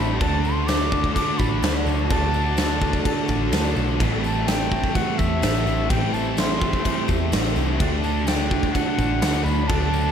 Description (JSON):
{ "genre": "rock, shoegaze and dream pop", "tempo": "126 BPM", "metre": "4/4", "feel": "straight", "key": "D mixolydian", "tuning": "A4 = 440 Hz", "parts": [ { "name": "concert flute", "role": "melody", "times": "0.0-10.1 s", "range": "E5 to D6", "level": "-28 LUFS", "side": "left 1 dB", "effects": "slapback echo" }, { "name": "deep dark ambient pad", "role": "sustained chords", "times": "0.0-10.1 s", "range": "F#3 to A5", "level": "-34 LUFS", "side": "equal", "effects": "chorus, built-in reverb" }, { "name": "mellow electric guitar", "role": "riff", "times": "0.0-10.1 s", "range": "A2 to G4", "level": "-28 LUFS", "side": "right 12 dB", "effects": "reverse reverb" }, { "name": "overdriven electric guitar", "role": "riff", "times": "0.0-10.1 s", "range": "A2 to A4", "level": "-30 LUFS", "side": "left 11 dB", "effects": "analog chorus" }, { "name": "tight distorted guitar", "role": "riff", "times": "0.0-10.1 s", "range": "A2 to D4", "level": "-29 LUFS", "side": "equal", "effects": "distortion" }, { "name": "vintage muted picked electric bass", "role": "bass", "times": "0.0-10.1 s", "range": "A1 to E2", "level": "-25 LUFS", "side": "equal", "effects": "none" }, { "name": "tambourine", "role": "percussion", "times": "0.1-10.0 s", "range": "none", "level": "-43 LUFS", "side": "right 7 dB", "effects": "none" }, { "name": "huge arena drum kit", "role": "drums", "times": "0.2-9.8 s", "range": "crash cymbal, kick drum, snare drum", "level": "-24 LUFS", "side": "equal", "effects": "none" } ], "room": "light reverb, small room ambience", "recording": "none", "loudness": "-19 LUFS", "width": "side -8 dB against mid", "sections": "0.0-10.1 A section", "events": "none", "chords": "0.2 D; 4.0 Am7; 7.8 D" }